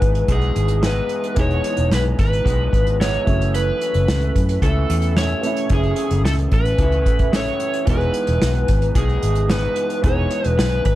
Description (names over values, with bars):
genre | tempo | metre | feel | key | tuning
indie pop, bedroom pop | 111 BPM | 4/4 | straight | E major | A4 = 440 Hz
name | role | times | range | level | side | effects
overdriven slide guitar | melody | 0.0-11.0 s | G#4 to C#5 | -23 LUFS | equal | wide subtle chorus, analog delay
electric guitar through a small old amp | accompaniment | 0.0-11.0 s | F#2 to E4 | -26 LUFS | left 2 dB | analog chorus, warbly pitch drift
warm upright piano | accompaniment | 0.0-11.0 s | E3 to G#4 | -30 LUFS | right 4 dB | cassette tape
vintage muted fingered electric bass | bass | 0.0-11.0 s | E1 to F#2 | -20 LUFS | equal | none
unplugged drum kit | drums | 0.0-11.0 s | hi-hat, kick drum, snare drum | -21 LUFS | equal | none
room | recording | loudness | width
small room ambience | dark, warm production | -16 LUFS | side -15 dB against mid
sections
0.0-11.0 A section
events
none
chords
0.0 Emaj7; 3.3 F#m7; 7.9 Emaj7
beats
0.29 0.83 | 1.37 1.91 2.45 3.00 | 3.54 4.08 4.62 5.16 | 5.70 6.25 6.79 7.33 | 7.87 8.41 8.95 9.49 | 10.04 10.58